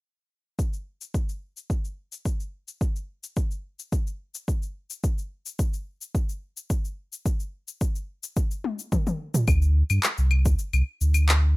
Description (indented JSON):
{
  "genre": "organic downtempo",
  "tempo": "108 BPM",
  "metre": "4/4",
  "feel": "straight",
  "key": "unclear",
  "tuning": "A4 = 440 Hz",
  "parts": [
    { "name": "deep house drum kit", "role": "drums", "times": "0.6-11.4 s", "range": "cabasa, claves, handclaps, toms", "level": "-28 LUFS", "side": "left 1 dB", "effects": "overdrive, small room ambience" },
    { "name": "electronic kick drum", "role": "drums", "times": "0.6-10.6 s", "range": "none", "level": "-25 LUFS", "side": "equal", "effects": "overdrive, small room ambience" },
    { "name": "warm sub bass", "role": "bass", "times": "9.5-11.6 s", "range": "C2 to G2", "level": "-19 LUFS", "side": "equal", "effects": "none" }
  ],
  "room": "little or no reverb",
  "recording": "rough home demo mix",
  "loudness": "-24 LUFS",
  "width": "side -22 dB against mid",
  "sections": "0.6-9.5 A section; 9.5-11.6 B section",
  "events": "drum fill 8.6-9.5",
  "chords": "none",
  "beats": "| 0.59 1.14 1.70 2.25 | 2.81 3.37 3.92 4.48 | 5.03 5.59 6.14 6.70 | 7.25 7.81 8.37 8.92 | 9.48 10.03 10.59 11.14"
}